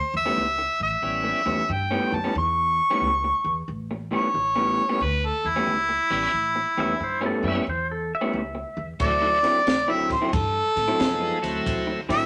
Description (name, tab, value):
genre	electric blues shuffle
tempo	90 BPM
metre	4/4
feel	swing 65% on 8ths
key	A mixolydian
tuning	A4 = 438 Hz
part	warm harmonica	melody	0.0-12.3 s	E4 to C#6	-25 LUFS	equal	overdrive
part	upright bass	bass	0.1-12.2 s	A1 to A2	-35 LUFS	equal	none
part	electric guitar through a small old amp	riff	0.3-12.2 s	A2 to E4	-30 LUFS	equal	none
part	bright tonewheel organ	accompaniment	1.0-1.4, 6.1-12.0 s	F3 to E4	-31 LUFS	equal	slow rotary speaker, overdrive
part	clean lap steel guitar	second line	6.8-8.9 s	A4 to E5	-31 LUFS	equal	none
part	compact cocktail drum kit	drums	9.0-12.2 s	kick drum, ride cymbal, snare drum	-31 LUFS	equal	none
room	moderate studio reverb, RT60 0.6 s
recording	none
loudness	-24 LUFS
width	mono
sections	0.0-12.3 A section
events	none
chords	0.0 A9; 9.0 D9